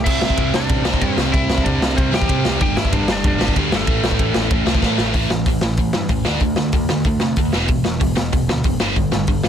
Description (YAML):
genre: punk rock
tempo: 189 BPM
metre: 4/4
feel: straight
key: A minor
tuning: A4 = 445 Hz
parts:
  - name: lightly driven lead guitar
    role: melody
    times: 0.0-4.8 s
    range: A3 to G5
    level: -25 LUFS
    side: left 1 dB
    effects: none
  - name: biting overdriven guitar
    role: riff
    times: 0.0-9.5 s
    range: E2 to D4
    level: -20 LUFS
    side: right 1 dB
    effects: none
  - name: growling picked electric bass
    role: bass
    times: 0.0-9.5 s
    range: E1 to C3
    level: -23 LUFS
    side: equal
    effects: overdrive
  - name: raw garage drum kit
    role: drums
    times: 0.1-9.5 s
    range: crash cymbal, hi-hat, kick drum, ride cymbal, snare drum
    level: -19 LUFS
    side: equal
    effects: none
room: little or no reverb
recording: dense, heavily limited modern master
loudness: -16 LUFS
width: side -9 dB against mid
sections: 0.0-5.1 A section; 5.1-9.5 B section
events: drum fill 4.8-5.1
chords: 0.1 C; 2.6 G5; 3.9 A5; 6.3 D5; 7.5 E5; 8.8 G5